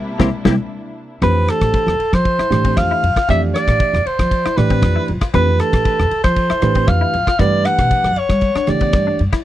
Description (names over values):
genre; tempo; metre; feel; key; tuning
electric jazz fusion; 117 BPM; 4/4; straight; F lydian; A4 = 440 Hz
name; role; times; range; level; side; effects
dark studio string section; sustained chords; 0.0-1.2 s; C3 to E4; -31 LUFS; equal; none
reed electric piano; accompaniment; 0.2-9.2 s; E3 to D5; -20 LUFS; right 6 dB; none
semi-hollow electric guitar; stabs; 0.2-9.4 s; B3 to G4; -25 LUFS; left 12 dB; ensemble chorus
upright bass; bass; 0.2-9.4 s; C2 to G3; -19 LUFS; equal; none
damped 70s drum kit; drums; 0.2-9.4 s; kick drum, ride cymbal, rim click, snare drum; -20 LUFS; equal; none
congas; percussion; 0.2-0.6 s; none; -22 LUFS; left 5 dB; none
mellow soprano saxophone; melody; 1.2-9.2 s; A4 to F#5; -17 LUFS; equal; none
room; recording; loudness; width
little or no reverb; dry, close 1970s-style studio recording; -13 LUFS; side -13 dB against mid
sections
0.0-1.2 A section; 1.2-9.4 B section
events
band accent 0.0-1.2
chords
0.0 C9; 1.2 Fmaj9; 7.4 Gmaj9